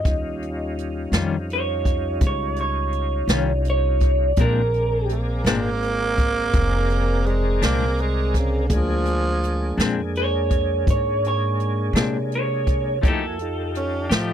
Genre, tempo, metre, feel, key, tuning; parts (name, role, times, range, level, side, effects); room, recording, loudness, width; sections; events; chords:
slow blues; 56 BPM (dotted quarters); 12/8; straight; A4 = 440 Hz
electric guitar through a small old amp; melody; 0.0-13.8 s; A4 to Eb5; -24 LUFS; right 2 dB; phaser, slapback echo
tonewheel organ; sustained chords; 0.0-14.3 s; G3 to Ab5; -29 LUFS; left 1 dB; slow rotary speaker, chorus vibrato
jazz brush drum kit; drums; 0.0-14.3 s; hi-hat, kick drum, snare drum; -22 LUFS; equal
upright bass; bass; 0.1-14.3 s; F1 to C3; -24 LUFS; equal
semi-hollow electric guitar; accompaniment; 1.1-14.3 s; Bb2 to G4; -24 LUFS; left 6 dB; tremolo
growling tenor saxophone; second line; 5.1-14.3 s; Db3 to Db4; -24 LUFS; right 4 dB
little or no reverb; dry, close 1970s-style studio recording; -19 LUFS; side -10 dB against mid
0.0-14.3 A section
0.0 Eb9; 4.4 Bb9; 13.0 F9